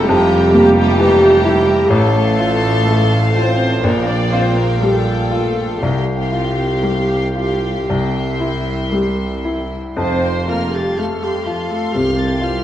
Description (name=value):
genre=classical, romantic movement for piano and orchestra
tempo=57-66 BPM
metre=4/4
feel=rubato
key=F major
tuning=A4 = 440 Hz
part: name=clear baby grand piano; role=melody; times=0.0-12.6 s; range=A1 to F4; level=-18 LUFS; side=left 1 dB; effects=none
part: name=rich studio violin section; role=melody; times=0.0-12.6 s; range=G5 to C6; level=-30 LUFS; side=left 2 dB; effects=none
part: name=dark chamber violin section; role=second line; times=0.0-12.6 s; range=E5 to A6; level=-27 LUFS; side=left 1 dB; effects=none
part: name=warm studio viola section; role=accompaniment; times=0.0-12.6 s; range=F4 to D5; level=-18 LUFS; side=equal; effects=none
part: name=dark studio double bass section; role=bass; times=0.0-12.6 s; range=F1 to C2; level=-22 LUFS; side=equal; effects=none
part: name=warm studio cello section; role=bass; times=0.0-12.6 s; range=F3 to D4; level=-25 LUFS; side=right 2 dB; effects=none
part: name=warm tuba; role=bass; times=0.0-12.6 s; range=F1 to C2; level=-22 LUFS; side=right 2 dB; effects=none
room=wet stone room reverb, RT60 1.3 s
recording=worn, warbling old tape, cassette tape, warbly pitch drift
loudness=-13 LUFS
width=side -12 dB against mid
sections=0.0-12.6 A section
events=none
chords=0.0 Edim/F; 1.9 F/A; 3.8 Gm7/Bb; 5.8 Csus4; 10.0 F